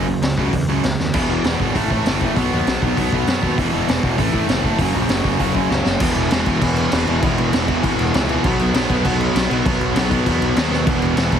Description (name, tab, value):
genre	punk rock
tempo	197 BPM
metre	4/4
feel	straight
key	unclear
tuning	A4 = 440 Hz
part	cranked stack guitar	riff	0.0-11.4 s	E2 to B3	-22 LUFS	right 11 dB	overdrive
part	overdriven semi-hollow guitar	riff	0.0-11.4 s	E2 to B3	-23 LUFS	left 12 dB	none
part	fuzz picked electric bass	bass	0.0-11.4 s	E1 to A2	-23 LUFS	equal	overdrive
part	raw garage drum kit	drums	0.2-11.4 s	crash cymbal, hi-hat, kick drum, snare drum	-21 LUFS	equal	none
part	tight distorted guitar	riff	1.1-11.4 s	E2 to B3	-24 LUFS	equal	distortion
room	light reverb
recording	heavily compressed radio sound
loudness	-16 LUFS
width	side -8 dB against mid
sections	0.0-1.1 A section; 1.1-6.0 B section; 6.0-11.4 C section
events	drum fill 1.0, 5.7-6.0, 10.7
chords	0.0 F#5; 1.1 E; 1.8 A5; 2.4 B; 3.6 E5; 4.2 A5; 4.8 F#5; 6.0 E5; 8.4 B; 10.9 E5